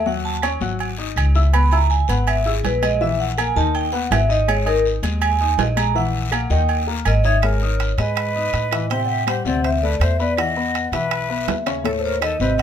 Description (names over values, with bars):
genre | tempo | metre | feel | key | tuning
Afro-Cuban jazz | 163 BPM | 4/4 | straight | G# minor | A4 = 439 Hz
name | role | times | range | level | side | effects
vibraphone with medium hard mallets | melody | 0.0-12.6 s | G#4 to B5 | -22 LUFS | right 2 dB | none
warm baby grand piano | accompaniment | 0.0-12.6 s | A2 to E6 | -25 LUFS | left 6 dB | none
upright bass | bass | 0.0-12.6 s | G#1 to A2 | -21 LUFS | equal | none
guiro | percussion | 0.1-12.6 s | none | -34 LUFS | left 7 dB | none
agogo bells and timbales | percussion | 0.4-12.6 s | none | -26 LUFS | right 9 dB | none
claves | percussion | 0.4-12.4 s | none | -32 LUFS | right 7 dB | none
breathy bright jazz flute | second line | 7.1-12.6 s | A4 to E5 | -27 LUFS | left 3 dB | none
room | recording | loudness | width
little or no reverb | minimal, uncompressed stereo recording | -17 LUFS | side -9 dB against mid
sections
0.0-7.4 A section; 7.4-12.6 B section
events
vibraphone solo 0.0-7.4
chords
0.1 F#sus2; 0.8 G#5; 1.5 C#m7; 3.0 F#13/A#; 3.7 G#mmaj7; 4.5 G#sus2; 6.0 F#13b9/A#; 6.7 D#5; 7.4 G#madd9; 8.9 Am7; 9.6 Dsus2; 10.4 Esus2; 11.8 B13b9